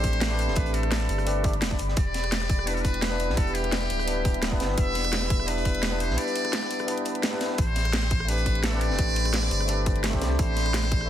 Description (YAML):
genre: liquid drum and bass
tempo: 171 BPM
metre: 4/4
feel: straight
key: A minor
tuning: A4 = 445 Hz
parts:
  - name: trumpet with metal mute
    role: melody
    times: 0.0-11.1 s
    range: G4 to E5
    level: -31 LUFS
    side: equal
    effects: dub echo
  - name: tine electric piano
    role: accompaniment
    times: 0.0-11.1 s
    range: G3 to D5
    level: -31 LUFS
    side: left 1 dB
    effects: overdrive, dub echo
  - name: glassy FM pad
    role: sustained chords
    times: 0.0-11.1 s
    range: C4 to B5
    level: -35 LUFS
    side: left 1 dB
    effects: ensemble chorus, built-in reverb, sidechain pumping
  - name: saturated sub bass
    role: bass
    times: 0.0-11.1 s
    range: D1 to C2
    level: -28 LUFS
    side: equal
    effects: none
  - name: crunchy breakbeat drum kit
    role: drums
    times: 0.0-11.0 s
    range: hi-hat, snare drum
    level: -36 LUFS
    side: equal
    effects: high-pass filter on hats, small room ambience, high-pass filter on snare, high-pass filter on room
  - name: drum and bass drum kit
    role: drums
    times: 0.0-11.1 s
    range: hi-hat, rim click, snare drum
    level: -31 LUFS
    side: right 1 dB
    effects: overdrive, small room ambience
  - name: electronic kick drum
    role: drums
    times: 0.0-11.0 s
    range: none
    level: -25 LUFS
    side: equal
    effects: overdrive, small room ambience
room: light reverb, small room ambience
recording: dense, heavily limited modern master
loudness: -23 LUFS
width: side -11 dB against mid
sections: 0.0-11.1 A section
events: none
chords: 0.0 Am11; 2.0 Em7; 7.6 Am11